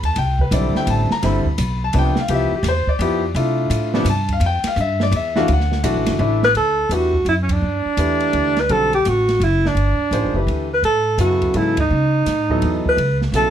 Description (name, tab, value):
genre	modal jazz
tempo	168 BPM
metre	3/4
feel	swing 65% on 8ths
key	G major from 6.5 s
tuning	A4 = 436 Hz
part	clear concert grand piano	accompaniment	0.0-13.5 s	C3 to B5	-21 LUFS	left 2 dB	none
part	upright bass	bass	0.0-13.5 s	F#1 to C#3	-20 LUFS	equal	none
part	open jazz drum kit	drums	0.0-13.4 s	hi-hat, kick drum, ride cymbal, snare drum	-26 LUFS	right 2 dB	none
part	warm alto saxophone	melody	6.4-13.5 s	C#4 to B4	-17 LUFS	right 1 dB	plate reverb
room	light reverb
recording	none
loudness	-16 LUFS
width	side -10 dB against mid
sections	0.0-6.5 A section; 6.5-13.5 B section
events	band accent 7.4, 11.7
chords	0.0 Cmaj9; 2.3 Fmaj9; 5.5 Dadd9; 6.5 Gmaj9; 10.8 Amaj9